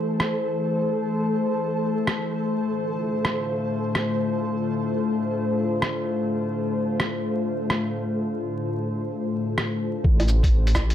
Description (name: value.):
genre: future garage.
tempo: 128 BPM.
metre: 4/4.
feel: swing 66% on 16ths.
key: unclear.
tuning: A4 = 435 Hz.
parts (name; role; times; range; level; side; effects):
warbly tape-like pad; sustained chords; 0.0-10.9 s; A2 to C5; -24 LUFS; left 2 dB; chorus, built-in reverb, sidechain pumping.
flickering grainy texture; texture; 0.0-10.1 s; A4; -34 LUFS; right 2 dB; built-in reverb.
lo-fi sampler-style drum kit; drums; 0.2-10.9 s; cabasa, hi-hat, rim click, woodblock; -27 LUFS; equal; none.
dark detuned saw bass; bass; 10.0-10.9 s; A1; -20 LUFS; equal; sidechain pumping.
electronic kick drum; drums; 10.0-10.9 s; none; -20 LUFS; equal; none.
room: wet digital room reverb, RT60 1.1 s, digital ambience.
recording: vinyl crackle.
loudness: -22 LUFS.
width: side -10 dB against mid.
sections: 0.0-10.0 A section.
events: none.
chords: 0.0 Am; 2.5 F6/A; 10.0 Am7.